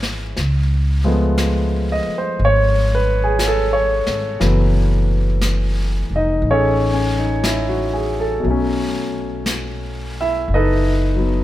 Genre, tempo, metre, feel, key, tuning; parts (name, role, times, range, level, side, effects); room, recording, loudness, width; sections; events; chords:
jazz ballad; 59 BPM; 4/4; swing 67% on 8ths; C# minor; A4 = 440 Hz
clear concert grand piano; accompaniment; 0.0-11.4 s; B2 to E5; -19 LUFS; equal
upright bass; bass; 0.0-11.4 s; E#1 to C#2; -19 LUFS; equal
jazz brush drum kit; drums; 0.0-11.4 s; brushed snare drum, hi-hat, snare drum; -28 LUFS; left 1 dB
light reverb; -16 LUFS; side -14 dB against mid
0.0-11.4 A section
0.4 C#7b13; 4.4 F#m11; 8.4 B7